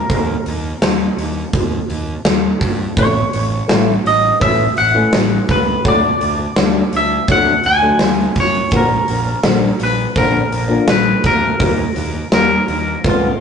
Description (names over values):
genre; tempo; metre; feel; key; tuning
quiet-loud alternative rock; 83 BPM; 4/4; straight; unclear; A4 = 440 Hz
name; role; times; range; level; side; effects
twangy electric guitar; melody; 0.0-13.4 s; E#4 to G#5; -17 LUFS; left 1 dB; spring reverb, analog delay
fuzz fingered electric bass; bass; 0.1-13.3 s; A1 to G2; -22 LUFS; right 2 dB; overdrive
big rock drum kit; drums; 0.1-13.2 s; hi-hat, kick drum, snare drum; -16 LUFS; equal; none
fingerpicked old ladder-braced acoustic guitar; arpeggios; 3.0-13.3 s; C#3 to E#4; -20 LUFS; left 2 dB; analog delay
room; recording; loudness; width
light reverb; rough rehearsal-room recording, nothing above 10.3 kHz; -13 LUFS; side -6 dB against mid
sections
0.0-13.4 A section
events
none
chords
0.1 D#5; 3.0 A; 5.8 D; 8.7 A#; 11.6 D#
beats
| 0.10 0.82 1.54 2.25 | 2.97 3.69 4.41 5.13 | 5.85 6.57 7.29 8.01 | 8.73 9.45 10.17 10.89 | 11.61 12.33 13.05